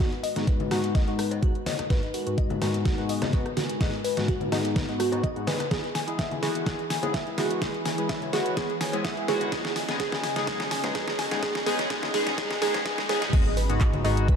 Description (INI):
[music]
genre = progressive house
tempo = 126 BPM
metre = 4/4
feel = straight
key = G# minor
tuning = A4 = 438 Hz
[part]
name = warm analog pad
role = sustained chords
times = 0.2-14.4 s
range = C#3 to B5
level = -36 LUFS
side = equal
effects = chorus, sidechain pumping
[part]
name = glassy wavetable pluck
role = arpeggios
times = 0.0-14.3 s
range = F#4 to D#6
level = -31 LUFS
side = right 2 dB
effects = chorus, sidechain pumping, dub echo
[part]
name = chorused polysynth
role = stabs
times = 0.0-14.4 s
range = G#2 to G#4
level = -29 LUFS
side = left 2 dB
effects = cassette tape, sidechain pumping, dub echo
[part]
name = electronic kick drum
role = drums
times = 0.0-14.4 s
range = none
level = -25 LUFS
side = equal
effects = overdrive
[part]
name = pop drum kit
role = drums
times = 0.0-14.4 s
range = crash cymbal, handclaps, hi-hat, rim click, snare drum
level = -32 LUFS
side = equal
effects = overdrive
[part]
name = riser, swell and impact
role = sound effects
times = 2.2-14.4 s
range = none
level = -40 LUFS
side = right 1 dB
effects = none
[part]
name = congas and cowbell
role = percussion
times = 0.6-14.0 s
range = none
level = -38 LUFS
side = left 4 dB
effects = none
[part]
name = saturated sub bass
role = bass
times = 13.3-14.4 s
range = G#1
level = -29 LUFS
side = equal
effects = sidechain pumping
[sound]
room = moderate lush hall reverb, RT60 1.9 s, digital ambience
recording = dark, warm production, high-pass filter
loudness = -24 LUFS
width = side -7 dB against mid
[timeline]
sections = 0.0-13.3 A section; 13.3-14.4 B section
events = build-up 0.0-13.3; drum fill 0.0-13.3; filter sweep on analog polysynth 0.0-13.3; filter sweep on analog synth pad 0.0-13.3; filter sweep 0.0-13.3; swell 12.4-13.3; drop 13.3-14.4; impact 13.3-14.4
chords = 0.0 G#m7; 5.7 E; 9.5 C#sus2; 13.3 G#m7